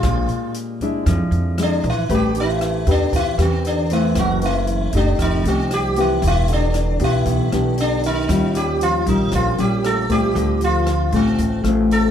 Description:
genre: bossa nova.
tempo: 116 BPM.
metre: 4/4.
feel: straight.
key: A minor.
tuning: A4 = 438 Hz.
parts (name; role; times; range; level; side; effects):
sitar; melody; 0.0-12.1 s; C4 to A4; -22 LUFS; equal; none.
nylon-string guitar; accompaniment; 0.0-12.1 s; F#2 to B4; -21 LUFS; left 2 dB; none.
upright bass; bass; 0.0-12.1 s; E1 to F2; -21 LUFS; right 1 dB; none.
open jazz drum kit; drums; 0.0-12.0 s; hi-hat, kick drum, rim click; -28 LUFS; equal; none.
mellow trombone; second line; 1.6-12.1 s; C3 to A3; -29 LUFS; right 3 dB; none.
room: little or no reverb.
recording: close, detailed microphones.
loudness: -16 LUFS.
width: side -9 dB against mid.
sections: 0.0-2.1 A section; 2.1-12.1 B section.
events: sitar solo 0.0-2.1.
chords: 0.0 Bb7#11; 2.1 Am9; 4.2 F#m7b5; 5.2 F9; 6.2 Em7; 8.3 D#9; 10.4 Dm7.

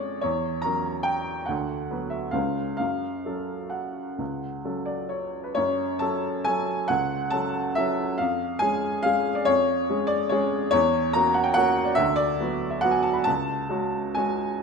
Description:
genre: classical, piano waltz.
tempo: 125-152 BPM.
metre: 3/4.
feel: rubato.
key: F# minor.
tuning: A4 = 440 Hz.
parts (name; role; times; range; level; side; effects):
clear upright piano; solo; 0.0-14.6 s; C#2 to B5; -23 LUFS; equal; none.
room: moderate recital hall reverb, RT60 1.5 s.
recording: minimal, uncompressed stereo recording.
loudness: -23 LUFS.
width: side -5 dB against mid.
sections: 0.0-5.6 A section; 5.6-14.6 A section.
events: none.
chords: 0.2 F#7/E; 1.5 Bm/D; 2.3 C#7; 2.8 F#m; 8.2 C#/E#; 10.7 F#7/E; 12.0 Bm/D; 13.3 C#sus4.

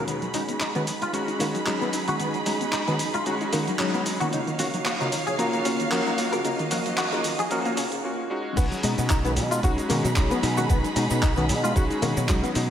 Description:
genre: nu-disco, nu disco.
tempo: 113 BPM.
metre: 4/4.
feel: swing 55% on 16ths.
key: unclear.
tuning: A4 = 440 Hz.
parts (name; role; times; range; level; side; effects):
warm electric grand piano; accompaniment; 0.0-12.7 s; Cb3 to F5; -28 LUFS; left 1 dB; sidechain pumping, tape echo.
dark studio violin section; sustained chords; 0.0-12.7 s; D#4 to B5; -31 LUFS; right 2 dB; sidechain pumping.
wide unison pluck; arpeggios; 0.1-12.7 s; Db3 to D#4; -31 LUFS; left 1 dB; sidechain pumping, tape echo.
direct-recorded clean electric guitar; riff; 0.1-12.5 s; F#3 to Bb4; -30 LUFS; left 2 dB; ensemble chorus, low-pass filter, tape echo.
dusty soul sampler-style drum kit; drums; 0.1-12.7 s; crash cymbal, handclaps, hi-hat, shaker; -31 LUFS; equal; none.
fingered electric bass with an envelope filter; bass; 8.6-12.7 s; B1 to B2; -26 LUFS; equal; none.
electronic kick drum; drums; 8.6-12.4 s; none; -24 LUFS; right 1 dB; none.
maracas; percussion; 8.6-12.5 s; none; -39 LUFS; right 3 dB; none.
room: wet lush hall reverb, RT60 2.0 s, digital ambience.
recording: dreamy mix soaked in reverb, high-pass filter.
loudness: -22 LUFS.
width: side -9 dB against mid.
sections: 0.1-8.6 A section; 8.6-12.7 B section.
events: build-up 0.1-8.6; filter sweep on synth arpeggio sound 0.1-8.6; break 8.0-8.6; drop 8.6-12.7.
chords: 0.1 B6; 4.3 Ebm9; 8.6 B6.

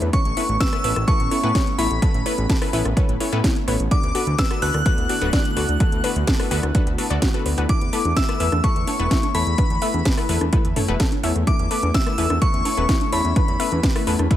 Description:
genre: progressive house.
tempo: 127 BPM.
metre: 4/4.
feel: straight.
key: unclear.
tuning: A4 = 440 Hz.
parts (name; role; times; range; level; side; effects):
airy breathy pad; sustained chords; 0.0-14.4 s; D3 to F#4; -30 LUFS; equal; chorus, sidechain pumping.
soft round pluck; arpeggios; 0.0-14.4 s; C#4 to F#6; -31 LUFS; left 1 dB; chorus, sidechain pumping, ping-pong delay.
wide unison pluck; stabs; 0.0-14.4 s; A3 to D5; -28 LUFS; left 4 dB; sidechain pumping, ping-pong delay.
fat analog bass; bass; 0.0-14.3 s; D1 to A2; -23 LUFS; equal; sidechain pumping.
house drum kit; drums; 0.0-14.4 s; hi-hat, rim click, snare drum; -27 LUFS; equal; overdrive.
glassy synth bell; melody; 0.1-14.4 s; B5 to F#6; -27 LUFS; left 2 dB; chorus, digital delay.
airy dreamy lead; second line; 0.1-14.4 s; B5 to F#6; -33 LUFS; right 1 dB; chorus, sidechain pumping, ping-pong delay.
electronic kick drum; drums; 0.1-14.4 s; none; -20 LUFS; equal; overdrive.
electronic congas and toms; percussion; 7.7-14.3 s; none; -29 LUFS; right 1 dB; sidechain pumping on perc, sidechain pumping on toms.
room: little or no reverb.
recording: none.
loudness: -18 LUFS.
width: side -12 dB against mid.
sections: 0.0-14.4 A section.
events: none.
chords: 0.1 Aadd9; 3.9 D6; 7.7 Esus4.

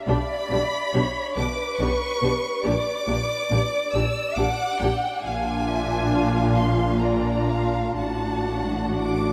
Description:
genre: classical, slow romantic movement for string orchestra.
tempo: 61-71 BPM.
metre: 3/4.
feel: rubato.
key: unclear.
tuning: A4 = 440 Hz.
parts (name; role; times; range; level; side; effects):
rich chamber violin section; second line; 0.0-9.3 s; B4 to D6; -30 LUFS; equal; none.
clear chamber violin section; melody; 0.1-9.3 s; F#5 to E6; -33 LUFS; equal; none.
warm chamber viola section; accompaniment; 0.1-9.3 s; D4 to G4; -30 LUFS; equal; none.
rich chamber double bass section; bass; 0.1-9.3 s; A1 to B1; -30 LUFS; equal; none.
warm chamber cello section; bass; 0.1-9.3 s; A2 to B2; -30 LUFS; equal; none.
room: wet cathedral reverb, RT60 6.6 s.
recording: in a vast, echoing space.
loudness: -24 LUFS.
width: mono.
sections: 0.0-9.3 A section.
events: none.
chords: 0.1 G/B; 2.6 Gm/Bb; 5.2 Bb7; 8.0 D/A.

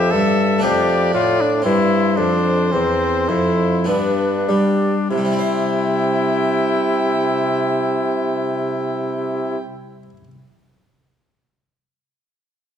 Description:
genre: classical, baroque-style sonata movement with continuo.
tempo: 48-61 BPM.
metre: 3/4.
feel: straight.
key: C major.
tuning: A4 = 442 Hz.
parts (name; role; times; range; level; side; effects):
bright trumpet; melody; 0.0-9.6 s; C4 to A4; -21 LUFS; left 5 dB; none.
warm violin; second line; 0.0-9.6 s; B4 to G5; -25 LUFS; right 4 dB; none.
harpsichord; accompaniment; 0.0-10.3 s; E2 to C5; -22 LUFS; left 2 dB; none.
mellow bassoon; bass; 0.0-9.6 s; E2 to G3; -20 LUFS; right 2 dB; none.
room: moderate recital hall reverb, RT60 1.5 s.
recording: dark, warm production.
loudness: -16 LUFS.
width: side -8 dB against mid.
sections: 0.0-5.1 A section; 5.1-8.8 B section.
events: slowing down 0.0-5.1.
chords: 0.0 Dm; 0.6 Dm/F; 1.6 C; 3.9 G; 5.1 C.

